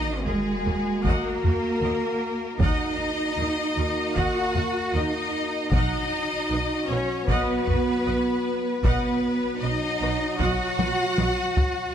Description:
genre	cinematic, epic orchestral film score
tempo	77 BPM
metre	4/4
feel	straight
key	unclear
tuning	A4 = 436 Hz
part	clear symphonic violin section	melody	0.0-11.9 s	Ab4 to Gb5	-31 LUFS	left 4 dB	none
part	clear symphonic violin section	second line	0.0-11.9 s	Ab4 to Gb5	-34 LUFS	left 4 dB	none
part	mellow French horn section	sustained chords	0.0-11.9 s	F#3 to Gb4	-31 LUFS	left 2 dB	none
part	rich symphonic cello section	bass	0.0-11.9 s	Ab3 to Gb4	-27 LUFS	right 3 dB	none
part	timpani	percussion	0.0-0.6 s	Eb3	-42 LUFS	left 2 dB	none
part	sub drop	sound effects	0.0-2.6 s	none	-35 LUFS	equal	none
part	clear symphonic viola section	accompaniment	0.3-11.3 s	Gb4 to Gb5	-33 LUFS	equal	none
part	rich symphonic double bass section	bass	0.3-11.3 s	B1 to Eb2	-29 LUFS	right 2 dB	none
part	taiko ensemble	drums	1.0-11.9 s	none	-26 LUFS	left 1 dB	none
room	moderate concert hall reverb, RT60 2.2 s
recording	none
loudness	-22 LUFS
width	side -9 dB against mid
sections	0.0-11.9 A section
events	impact 0.0-2.6; drum fill 10.8-11.9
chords	0.0 Ebm; 5.7 B

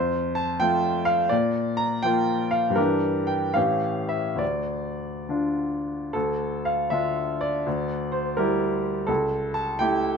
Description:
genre	classical, romantic character piece for solo piano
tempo	67-88 BPM (dotted quarters)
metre	6/8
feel	rubato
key	D minor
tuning	A4 = 438 Hz
part	clear grand piano	solo	0.0-10.2 s	C#2 to Bb5	-22 LUFS	equal	none
room	light reverb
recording	minimal, uncompressed stereo recording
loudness	-22 LUFS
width	side -6 dB against mid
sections	0.0-6.1 A section; 6.1-10.2 A section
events	none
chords	0.0 F; 1.3 Bb; 2.8 Em7b5/G; 3.6 A7; 4.4 Dm; 7.7 Em7b5/D; 9.1 A7/C#

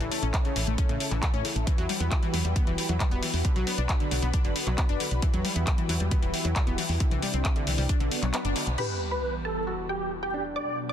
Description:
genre	uplifting trance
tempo	135 BPM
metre	4/4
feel	straight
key	E minor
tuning	A4 = 440 Hz
part	analog string pad	sustained chords	0.0-10.9 s	E2 to F#5	-34 LUFS	left 1 dB	ensemble chorus, sidechain pumping
part	analog pluck	arpeggios	0.0-8.6 s	C#3 to D4	-34 LUFS	left 2 dB	chorus, sidechain pumping, digital delay
part	solid FM bass	bass	0.0-8.8 s	E1 to A2	-28 LUFS	equal	tube saturation, sidechain pumping
part	house drum kit	drums	0.0-8.9 s	crash cymbal, handclaps, hi-hat	-32 LUFS	left 1 dB	sidechain pumping on hats, sidechain pumping on cymbals
part	electronic kick drum	drums	0.3-8.0 s	none	-26 LUFS	equal	none
part	big supersaw lead	melody	8.8-10.9 s	G4 to D5	-30 LUFS	right 1 dB	phaser, sidechain pumping, low-pass filter, dub echo
part	felt-muted upright piano	second line	8.8-10.9 s	D4 to G4	-37 LUFS	right 1 dB	digital delay
part	wide unison pluck	second line	8.8-10.9 s	G5 to D6	-38 LUFS	right 2 dB	sidechain pumping, digital delay
part	sub drop	sound effects	8.8-10.6 s	none	-37 LUFS	equal	none
room	digital ambience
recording	dense, heavily limited modern master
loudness	-24 LUFS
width	side -10 dB against mid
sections	0.0-8.8 A section; 8.8-10.9 B section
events	kick drops out 8.3-8.8; band accent 8.3; impact 8.8-10.6; filter sweep on supersaw synth 8.8-10.9; filter sweep on analog synth pad 8.8-10.9; filter sweep on synth pluck 8.8-10.9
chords	0.0 A; 1.7 Emadd9; 3.4 Bm; 5.2 Emadd9; 7.0 Cadd9; 7.9 Bm; 8.8 Emadd9

